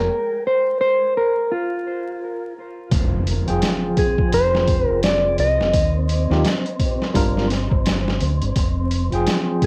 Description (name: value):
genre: trip hop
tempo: 85 BPM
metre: 4/4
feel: swing 60% on 16ths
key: F dorian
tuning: A4 = 440 Hz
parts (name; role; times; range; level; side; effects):
- mellow electric guitar; melody; 0.0-9.7 s; F4 to Eb5; -24 LUFS; equal; spring reverb, cassette tape, dub echo
- overdriven tine electric piano; accompaniment; 0.0-9.7 s; Eb3 to G5; -26 LUFS; equal; tremolo, cassette tape, tape echo
- deep dub fingered electric bass; bass; 0.0-9.2 s; F1 to Eb2; -24 LUFS; equal; none
- wind-like tuned noise texture; texture; 0.0-9.7 s; C4; -32 LUFS; equal; built-in reverb, cassette tape
- trip hop sampler-style drum kit; drums; 2.9-9.7 s; hi-hat, kick drum, snare drum; -24 LUFS; equal; cassette tape
- impact; sound effects; 2.9-5.7 s; none; -32 LUFS; equal; none
room: little or no reverb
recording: home recording on cassette, vinyl crackle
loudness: -20 LUFS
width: mono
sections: 0.0-2.9 A section; 2.9-9.7 B section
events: break 0.1-2.9; impact 2.9-5.7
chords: 0.1 N.C.; 2.9 Fmadd9; 5.7 N.C.; 7.1 Gm7; 8.6 Fmadd9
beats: | 0.09 0.80 1.50 2.21 | 2.91 3.62 4.33 5.03 | 5.74 6.44 7.15 7.85 | 8.56 9.27